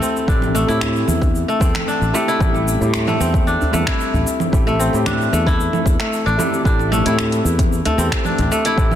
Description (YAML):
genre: organic downtempo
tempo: 113 BPM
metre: 4/4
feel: straight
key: A minor pentatonic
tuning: A4 = 440 Hz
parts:
  - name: felt-muted upright piano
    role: accompaniment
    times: 0.0-9.0 s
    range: G3 to G4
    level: -25 LUFS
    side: right 1 dB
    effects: sidechain pumping, tape echo
  - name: kora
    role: arpeggios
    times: 0.0-9.0 s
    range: A3 to E4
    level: -20 LUFS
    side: left 1 dB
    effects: tape echo
  - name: deep house drum kit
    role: drums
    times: 0.0-9.0 s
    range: congas, finger snaps, hi-hat, shaker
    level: -24 LUFS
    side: right 1 dB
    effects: overdrive, soft clipping on snare
  - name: djembe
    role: percussion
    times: 0.0-9.0 s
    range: none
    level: -27 LUFS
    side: equal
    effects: none
  - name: sustaining fretless electric bass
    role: bass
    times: 0.3-9.0 s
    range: A1 to A2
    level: -20 LUFS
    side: equal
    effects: sidechain pumping
  - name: electronic kick drum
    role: drums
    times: 0.3-8.9 s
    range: none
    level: -18 LUFS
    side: equal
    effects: overdrive
room: light reverb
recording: dense, heavily limited modern master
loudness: -15 LUFS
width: side -10 dB against mid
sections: 0.0-9.0 A section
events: none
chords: 0.0 Am7